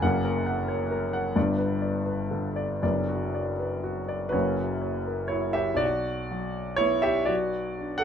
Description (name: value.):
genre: classical, romantic nocturne for solo piano.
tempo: 39-46 BPM (dotted quarters).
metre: 6/8.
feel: rubato.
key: B minor.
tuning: A4 = 440 Hz.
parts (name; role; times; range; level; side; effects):
warm grand piano; solo; 0.0-8.0 s; F#1 to F#5; -25 LUFS; equal; none.
room: light reverb.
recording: none.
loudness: -25 LUFS.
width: side -8 dB against mid.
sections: 0.0-5.8 A section; 5.8-8.0 B section.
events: none.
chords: 0.0 F#; 1.4 G; 2.8 Bm/F#; 4.3 F#; 5.8 Bm.